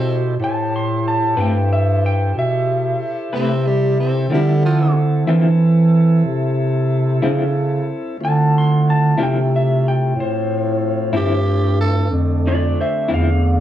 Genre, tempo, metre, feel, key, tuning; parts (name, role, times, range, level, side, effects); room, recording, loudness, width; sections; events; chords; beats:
blues; 61 BPM (dotted quarters); 12/8; straight; A4 = 443 Hz
growling tenor saxophone; second line; 0.0-5.0, 11.2-12.1 s; F3 to A4; -23 LUFS; right 2 dB
bright tonewheel organ; sustained chords; 0.0-13.6 s; D3 to C5; -26 LUFS; right 1 dB; slow rotary speaker, overdrive
mellow bass clarinet; bass; 0.0-13.6 s; E2 to E3; -16 LUFS; right 1 dB
electric guitar through a small old amp; melody; 0.4-13.6 s; F4 to C6; -22 LUFS; equal; warbly pitch drift
electric guitar through a small old amp; accompaniment; 1.4-13.3 s; D3 to B4; -22 LUFS; left 4 dB; tremolo
light reverb, small room reverb; worn, warbling old tape, cassette tape, warbly pitch drift, small room ambience; -15 LUFS; side -12 dB against mid
0.0-13.6 A section
0.0 Am9; 4.3 Dm9
| 0.39 1.37 2.34 3.32 | 4.30 5.28 6.25 7.23 | 8.21 9.19 10.16 11.14 | 12.12 13.10